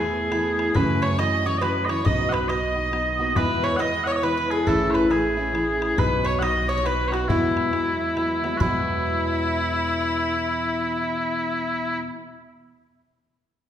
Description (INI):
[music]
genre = celtic folk, Celtic waltz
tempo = 138 BPM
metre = 3/4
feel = swing 63% on 8ths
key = E major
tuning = A4 = 441 Hz
[part]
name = mellow small bagpipes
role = melody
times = 0.0-12.0 s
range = E4 to F#5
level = -24 LUFS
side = equal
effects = none
[part]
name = Irish bouzouki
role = second line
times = 0.0-12.0 s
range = E4 to D#5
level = -33 LUFS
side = right 4 dB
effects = none
[part]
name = dark fiddle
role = second line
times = 0.0-12.0 s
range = E4 to D#5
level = -31 LUFS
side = left 2 dB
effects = none
[part]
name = fingerpicked plugged-in steel-string acoustic guitar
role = accompaniment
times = 0.0-12.2 s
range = E2 to F#4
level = -26 LUFS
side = equal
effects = none
[part]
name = upright bass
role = bass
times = 0.0-12.0 s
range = A1 to F#2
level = -31 LUFS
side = equal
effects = none
[part]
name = bodhran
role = percussion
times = 0.3-8.9 s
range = none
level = -29 LUFS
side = left 1 dB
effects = none
[sound]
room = wet recital hall reverb, RT60 1.6 s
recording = recorded in a church or concert hall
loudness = -20 LUFS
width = side -10 dB against mid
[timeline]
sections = 0.0-8.6 A section; 8.6-11.2 B section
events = none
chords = 0.0 Asus2/E; 0.8 F#m7; 2.1 B; 3.4 E; 4.7 A; 6.0 B; 7.3 Eadd9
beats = 0.32 | 0.75 1.19 1.62 | 2.06 2.50 2.93 | 3.37 3.80 4.24 | 4.68 5.11 5.55 | 5.99 6.42 6.86 | 7.29 7.73 8.17 | 8.60 9.04 9.48 | 9.91 10.35 10.79